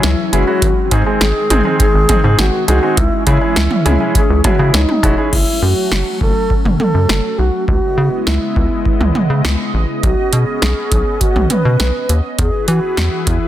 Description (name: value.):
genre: synth-pop.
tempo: 102 BPM.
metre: 4/4.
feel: straight.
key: C# harmonic minor.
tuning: A4 = 444 Hz.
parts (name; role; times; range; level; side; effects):
mellow wooden-headed alto flute; melody; 0.0-13.5 s; D#4 to B4; -19 LUFS; equal; none.
clear concert grand piano; accompaniment; 0.0-5.3 s; G#3 to G#4; -19 LUFS; equal; none.
phased analog pad; sustained chords; 0.0-13.5 s; C#3 to D#5; -22 LUFS; equal; phaser, chorus.
rubbery square bass; bass; 0.0-13.4 s; E1 to E3; -15 LUFS; equal; none.
electro analog drum machine; drums; 0.0-13.4 s; cowbell, crash cymbal, hi-hat, kick drum, snare drum, toms; -16 LUFS; equal; none.
room: light reverb.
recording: dense, heavily limited modern master.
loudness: -12 LUFS.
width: side -12 dB against mid.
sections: 0.0-5.3 A section; 5.3-13.5 B section.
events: none.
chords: 0.0 C#m; 0.6 G#; 3.0 C#m; 5.3 F#m; 7.7 C#m7; 10.0 Badd9; 12.4 Eadd9.